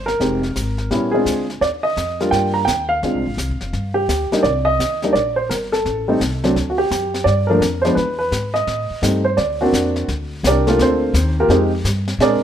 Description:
jazz piano trio; 170 BPM; 4/4; swing 65% on 8ths; G minor; A4 = 440 Hz
warm baby grand piano; melody; 0.0-12.4 s; F3 to Bb5; -17 LUFS; right 1 dB
upright bass; bass; 0.0-12.4 s; F1 to Bb2; -22 LUFS; left 1 dB
vintage brush drum kit; drums; 0.1-12.4 s; brushed snare drum, hi-hat, snare drum; -27 LUFS; left 2 dB
light reverb; -16 LUFS; side -9 dB against mid
0.0-10.1 A section; 10.1-12.4 B section
grand piano solo 10.1-12.4
0.2 Fm7; 0.9 Bb7; 1.6 Ebmaj9; 3.0 Dm7b5; 3.7 G5; 4.4 Cm9; 5.9 Am; 6.6 D; 7.3 Gm7; 8.0 E; 8.7 Am7b5; 9.4 D7alt; 10.1 Gm7; 11.5 Fm7
| 0.20 0.56 0.91 1.26 | 1.61 1.97 2.32 2.67 | 3.03 3.38 3.73 4.09 | 4.44 4.79 5.15 5.50 | 5.85 6.21 6.56 6.91 | 7.26 7.62 7.97 8.32 | 8.68 9.03 9.38 9.73 | 10.09 10.44 10.79 11.14 | 11.49 11.85 12.20

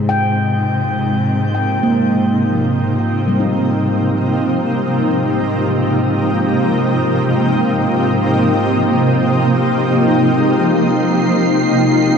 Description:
ambient; free time; Ab major; A4 = 439 Hz
shimmering ambient pad; sustained chords; 0.0-12.2 s; C3 to G4; -14 LUFS; equal; chorus, built-in reverb
handpan; arpeggios; 0.0-5.6, 10.4-12.2 s; G3 to G5; -21 LUFS; left 1 dB; ping-pong delay
dark studio cello section; bass; 0.0-10.2 s; Ab2; -21 LUFS; equal
wind-like tuned noise texture; texture; 10.7-12.2 s; C7; -26 LUFS; right 6 dB; built-in reverb
wet shimmer reverb, RT60 9.1 s; dark, warm production; -13 LUFS; side -6 dB against mid
0.0-10.3 A section; 10.3-12.2 B section
0.0 Abmaj7; 10.3 Abadd9
free time

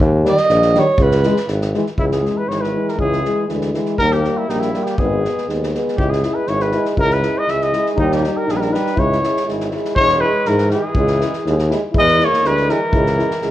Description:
balkan folk, Balkan brass band; 121 BPM; 2/4; straight; C# dorian sharp4; A4 = 436 Hz
warm tuba; bass; 0.0-13.5 s; E1 to G#2; -19 LUFS; equal
unplugged drum kit; percussion; 0.0-13.5 s; kick drum, snare drum; -24 LUFS; equal
warm French horn; accompaniment; 0.2-13.5 s; G3 to E4; -23 LUFS; left 4 dB
clear alto saxophone; second line; 0.3-1.5, 10.0-13.5 s; E3 to D#5; -19 LUFS; right 3 dB
clear euphonium; accompaniment; 0.3-13.5 s; D#3 to G#3; -24 LUFS; right 4 dB
mellow trumpet; melody; 2.0-13.5 s; D#4 to E5; -19 LUFS; left 1 dB
moderate recital hall reverb, RT60 1.4 s; worn, warbling old tape, cassette tape, warbly pitch drift; -14 LUFS; side -13 dB against mid
0.0-2.0 A section; 2.0-10.0 B section; 10.0-13.5 C section
alto saxophone solo 0.0-2.0
0.0 D#; 1.0 C#m; 4.0 D#; 5.0 G#m; 6.0 C#m; 8.0 D#; 9.0 C#m; 10.0 E; 11.0 C#m; 12.0 E; 12.9 C#m
| 0.01 0.51 | 1.00 1.50 | 1.99 2.49 | 2.99 3.49 | 3.99 4.49 | 4.99 5.50 | 6.00 6.50 | 6.99 7.49 | 7.99 8.49 | 8.99 9.48 | 9.98 10.47 | 10.97 11.46 | 11.96 12.45 | 12.94 13.43

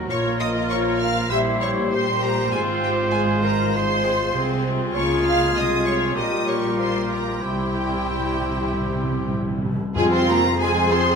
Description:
quick classical-period movement for symphony orchestra; 97 BPM; 4/4; uneven beats; F minor; A4 = 439 Hz
clear oboe; second line; 0.0-11.2 s; G4 to C5; -32 LUFS; equal
warm clarinet; second line; 0.0-11.2 s; E4 to G4; -30 LUFS; left 4 dB
rich studio viola section; accompaniment; 0.0-11.2 s; F3 to Ab4; -28 LUFS; equal
mellow French horn section; sustained chords; 0.0-11.2 s; G3 to G4; -28 LUFS; left 5 dB
clear trumpet; stabs; 0.0-9.6 s; Ab4 to C5; -29 LUFS; right 3 dB
clear studio double bass section; bass; 0.0-11.2 s; Ab1 to F2; -28 LUFS; right 3 dB
warm studio cello section; bass; 0.0-11.2 s; Ab2 to Ab4; -28 LUFS; right 3 dB
rich studio violin section; melody; 0.1-11.2 s; G5 to F6; -29 LUFS; left 1 dB
flute section; second line; 0.1-11.2 s; G4 to C6; -28 LUFS; right 1 dB
rich studio violin section; second line; 0.1-11.2 s; G4 to F5; -30 LUFS; left 2 dB
timpani; percussion; 7.4-10.9 s; F2 to C3; -28 LUFS; equal
wet recital hall reverb, RT60 1.3 s; -19 LUFS; side -6 dB against mid
0.0-10.0 A section; 10.0-11.2 B section
timpani fill 7.4-10.0
0.1 Bb5; 1.3 C7/Bb; 2.5 Fm/Ab; 4.9 Db; 6.2 Eb13/Bb; 7.4 C; 10.0 Fm
| 0.10 0.71 1.31 1.92 | 2.52 3.12 3.73 4.33 | 4.94 5.55 6.17 6.79 | 7.42 8.06 8.70 9.33 | 9.96 10.59

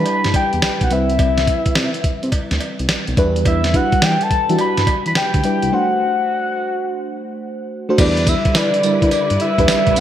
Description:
R&B, new jack swing; 106 BPM; 4/4; swing 66% on 16ths; E minor; A4 = 440 Hz
soft octave-layered synth lead; melody; 0.0-10.0 s; D5 to B5; -19 LUFS; equal; chorus, phaser
mellow FM electric piano; accompaniment; 0.0-10.0 s; G3 to C5; -21 LUFS; left 1 dB; chorus, phaser
smooth synth bass; bass; 0.0-10.0 s; B1 to E3; -21 LUFS; equal
dusty soul sampler-style drum kit; drums; 0.1-10.0 s; crash cymbal, hi-hat, kick drum, snare drum, tambourine; -19 LUFS; equal; gated reverb
cowbell; percussion; 0.1-9.9 s; -32 LUFS; right 4 dB
warm studio string section; sustained chords; 8.0-10.0 s; C3 to B4; -24 LUFS; right 1 dB
moderate plate reverb, RT60 2.4 s; bright 1980s-style digital production; -14 LUFS; side -10 dB against mid
0.0-8.0 A section; 8.0-10.0 B section
break 5.7-8.0
0.0 Em7; 0.9 Cmaj7; 3.2 Em7; 5.7 D7; 8.0 Em7
0.06 0.62 | 1.19 1.76 2.32 2.89 | 3.46 4.02 4.59 5.15 | 5.72 6.29 6.85 7.42 | 7.98 8.55 9.12 9.68

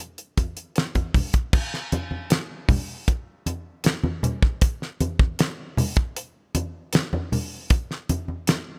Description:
soul; 78 BPM; 4/4; straight
damped 70s drum kit; drums; 0.2-8.7 s; crash cymbal, hi-hat, kick drum, snare drum; -24 LUFS; equal
congas; percussion; 0.4-8.7 s; -29 LUFS; equal
little or no reverb; -25 LUFS; mono
0.0-1.5 A section; 1.5-8.8 B section
0.76 | 1.53 2.31 3.08 3.85 | 4.62 5.39 6.16 6.93 | 7.70 8.47

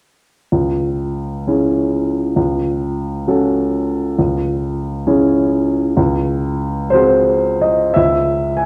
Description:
classical, romantic character piece for solo piano; 56-68 BPM (dotted quarters); 6/8; rubato; C# minor; A4 = 440 Hz
warm upright piano; solo; 0.5-8.7 s; C#2 to G#5; -16 LUFS; equal
wet recital hall reverb, RT60 1.9 s; dark, warm production; -17 LUFS; mono
0.5-8.0 A section
0.5 C#m; 2.4 F#m/C#; 4.2 C#m; 6.0 G#7/C#; 8.0 C#m
| 0.51 1.46 | 2.37 3.27 | 4.17 5.06 | 5.97 6.93 | 7.97

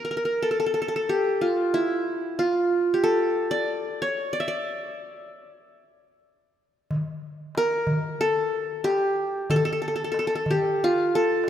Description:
Arabic maqam ensemble; 92 BPM; 4/4; straight; A4 = 441 Hz
qanun; melody; 0.0-11.5 s; E4 to E5; -23 LUFS; equal
darbuka; percussion; 6.9-11.5 s; -30 LUFS; equal
wet lush hall reverb, RT60 2.6 s; rough home demo mix; -22 LUFS; side -10 dB against mid
0.0-6.9 A section; 6.9-11.5 B section
0.41 1.06 | 1.71 2.36 3.01 3.66 | 4.31 4.96 5.61 6.26 | 6.91 7.56 8.21 8.86 | 9.51 10.15 10.80 11.45

